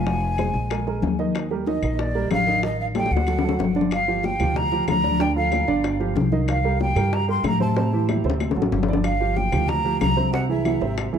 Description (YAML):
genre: Afro-Cuban jazz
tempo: 187 BPM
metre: 4/4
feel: straight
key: unclear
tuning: A4 = 440 Hz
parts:
  - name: breathy mellow jazz flute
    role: melody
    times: 0.0-11.1 s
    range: D5 to C6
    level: -26 LUFS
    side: equal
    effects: tape echo
  - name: warm baby grand piano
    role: accompaniment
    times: 0.0-11.2 s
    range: C3 to F5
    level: -26 LUFS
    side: right 7 dB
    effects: none
  - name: upright bass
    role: bass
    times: 0.0-11.2 s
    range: F1 to A2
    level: -25 LUFS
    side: left 1 dB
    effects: none
  - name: bongos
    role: percussion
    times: 0.1-11.2 s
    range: none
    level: -28 LUFS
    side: left 8 dB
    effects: none
  - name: congas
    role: percussion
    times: 0.1-11.2 s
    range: none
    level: -28 LUFS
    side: left 4 dB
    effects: none
  - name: claves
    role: percussion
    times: 0.4-11.1 s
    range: none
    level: -37 LUFS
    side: left 8 dB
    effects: none
room: small room reverb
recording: dry, close 1970s-style studio recording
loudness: -19 LUFS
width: side -8 dB against mid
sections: 0.0-3.9 A section; 3.9-11.2 B section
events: drum fill 3.0-3.9, 8.1-9.1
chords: 0.1 Fm; 0.7 Bb7sus4; 1.3 Ebmaj9; 2.6 F13/A (rootless); 3.3 D; 3.9 Gm7; 5.2 Dm; 5.8 G5; 6.5 Cm7; 7.8 Am7; 8.4 D7; 9.1 Gm7; 10.3 Caug